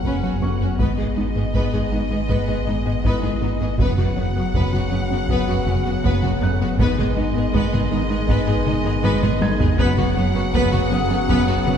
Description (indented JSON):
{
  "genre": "cinematic, hybrid orchestral and electronic film score",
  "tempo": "80 BPM",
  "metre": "4/4",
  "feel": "straight",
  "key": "G# minor",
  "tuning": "A4 = 440 Hz",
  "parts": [
    { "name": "rich symphonic violin section", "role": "melody", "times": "0.0-11.8 s", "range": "D#5 to F#5", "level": "-30 LUFS", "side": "left 4 dB", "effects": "none" },
    { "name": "rich studio violin section", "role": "second line", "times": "0.0-11.7 s", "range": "C#4 to B4", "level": "-30 LUFS", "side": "left 2 dB", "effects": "none" },
    { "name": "mellow French horn section", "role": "sustained chords", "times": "0.0-11.8 s", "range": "B3 to D#5", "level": "-29 LUFS", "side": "left 5 dB", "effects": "none" },
    { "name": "warm trombone section", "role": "sustained chords", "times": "0.0-11.8 s", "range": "B2 to G#3", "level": "-31 LUFS", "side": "right 1 dB", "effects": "none" },
    { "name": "rubbery square bass", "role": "riff", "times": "0.0-11.8 s", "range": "F#2 to G#3", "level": "-26 LUFS", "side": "left 3 dB", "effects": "none" },
    { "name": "rich symphonic cello section", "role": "bass", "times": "0.0-11.7 s", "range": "F#2 to G#2", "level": "-28 LUFS", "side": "right 2 dB", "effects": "none" },
    { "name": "rich symphonic double bass section", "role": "bass", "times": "0.0-11.7 s", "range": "F#1 to G#1", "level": "-26 LUFS", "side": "right 2 dB", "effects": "none" },
    { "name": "sub bass with octave", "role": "bass", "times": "0.0-11.8 s", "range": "F#1 to G#1", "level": "-28 LUFS", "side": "equal", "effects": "none" },
    { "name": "solo taiko drums", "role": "drums", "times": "0.0-11.8 s", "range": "none", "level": "-25 LUFS", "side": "equal", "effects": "none" },
    { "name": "impact", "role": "sound effects", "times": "0.0-0.8 s", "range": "none", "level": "barely audible", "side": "none", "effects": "none" },
    { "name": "felt-muted upright piano", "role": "texture", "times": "0.0-11.8 s", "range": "E4 to G#6", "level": "-35 LUFS", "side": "left 1 dB", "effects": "ping-pong delay" },
    { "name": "rich symphonic viola section", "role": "accompaniment", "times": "0.1-11.7 s", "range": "B3 to C#4", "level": "-28 LUFS", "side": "right 1 dB", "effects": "none" },
    { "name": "soft round pluck", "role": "arpeggios", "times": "0.1-11.8 s", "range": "F#3 to G#4", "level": "-32 LUFS", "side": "right 2 dB", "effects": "none" }
  ],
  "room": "wet scoring stage reverb, RT60 1.9 s",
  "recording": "heard from further back in the room",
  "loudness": "-18 LUFS",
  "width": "side -8 dB against mid",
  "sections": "0.0-11.8 A section",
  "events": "impact 0.0-0.8; drum fill 9.0-9.8",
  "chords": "0.0 F#sus4; 0.8 G#m; 3.8 F#sus4; 6.8 G#m; 9.8 F#sus4",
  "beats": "0.05 | 0.80 1.55 2.30 3.05 | 3.80 4.55 5.30 6.05 | 6.80 7.55 8.30 9.05 | 9.80 10.55 11.30"
}